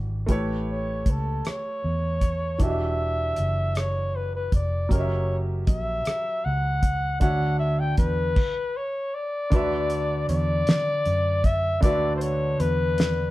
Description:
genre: slow six-eight R&B.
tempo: 52 BPM (dotted quarters).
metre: 6/8.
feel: straight.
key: unclear.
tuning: A4 = 440 Hz.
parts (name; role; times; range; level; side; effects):
warm grand piano; accompaniment; 0.0-13.3 s; D3 to F#5; -30 LUFS; right 1 dB; none.
vintage muted fingered electric bass; bass; 0.0-13.3 s; E1 to F#2; -27 LUFS; equal; none.
cloth-damped thuddy drum kit; drums; 0.3-13.2 s; crash cymbal, hi-hat, kick drum, rim click, snare drum; -22 LUFS; equal; none.
breathy flugelhorn; melody; 0.7-13.3 s; A4 to G5; -27 LUFS; left 1 dB; none.
room: moderate studio reverb, RT60 0.8 s.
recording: band playing live in one room.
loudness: -22 LUFS.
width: side -17 dB against mid.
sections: 0.3-9.5 A section; 9.5-13.3 B section.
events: stop 8.4-9.5.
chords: 0.3 A9; 2.6 Em9; 4.9 F#7b9; 7.2 Dmaj9; 9.5 D69.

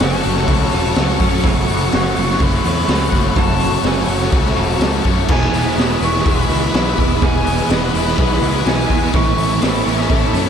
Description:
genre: rock, shoegaze and dream pop.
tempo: 125 BPM.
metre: 4/4.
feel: straight.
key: unclear.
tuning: A4 = 440 Hz.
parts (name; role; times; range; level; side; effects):
silver concert flute; melody; 0.0-10.5 s; F#5 to C#6; -24 LUFS; equal; tape echo.
phased string machine; sustained chords; 0.0-10.5 s; G#4 to C#6; -26 LUFS; equal; ensemble chorus, phaser.
picked twelve-string acoustic guitar; arpeggios; 0.0-10.5 s; E3 to A4; -26 LUFS; right 2 dB; none.
biting overdriven guitar; riff; 0.0-10.5 s; E2 to F#4; -21 LUFS; left 7 dB; ensemble chorus.
direct-recorded clean electric guitar; riff; 0.0-10.5 s; E2 to F#4; -21 LUFS; right 9 dB; reverse reverb.
fuzz picked electric bass; bass; 0.0-10.5 s; E1 to F#2; -20 LUFS; equal; overdrive.
raw garage drum kit; drums; 0.0-10.5 s; crash cymbal, hi-hat, kick drum, snare drum; -19 LUFS; equal; none.
room: moderate cathedral reverb, RT60 5.0 s.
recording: dreamy mix soaked in reverb.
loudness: -13 LUFS.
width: side -8 dB against mid.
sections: 0.0-10.5 A section.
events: none.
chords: 0.0 F#m; 5.3 E; 9.1 Aadd9.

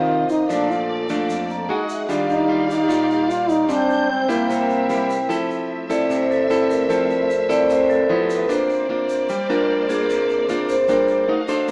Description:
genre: bossa nova.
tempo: 150 BPM.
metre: 4/4.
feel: straight.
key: F major from 5.3 s.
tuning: A4 = 444 Hz.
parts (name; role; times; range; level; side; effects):
breathy trombone; melody; 0.0-5.1 s; Bb3 to F4; -22 LUFS; equal; none.
nylon-string guitar; accompaniment; 0.0-11.7 s; F2 to C5; -25 LUFS; equal; none.
vibraphone with medium mallets; accompaniment; 0.0-11.3 s; Bb3 to Bb5; -23 LUFS; equal; none.
warm symphonic string section; sustained chords; 0.0-11.7 s; A3 to G6; -32 LUFS; equal; none.
egg shaker; percussion; 0.3-11.7 s; none; -46 LUFS; equal; none.
room: moderate large studio reverb, RT60 1.1 s.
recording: band playing live in one room, small speaker sound.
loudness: -20 LUFS.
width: mono.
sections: 0.0-5.3 A section; 5.3-11.7 B section.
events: vibraphone fill 1.3-2.1; vibraphone solo 5.3-11.7.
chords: 0.5 Bbmaj7; 1.7 Emaj9; 2.1 Ebmaj9; 3.7 Abmaj7; 4.5 C7; 5.3 Fmaj7; 8.1 G13; 8.5 C9sus4; 11.3 F7b9.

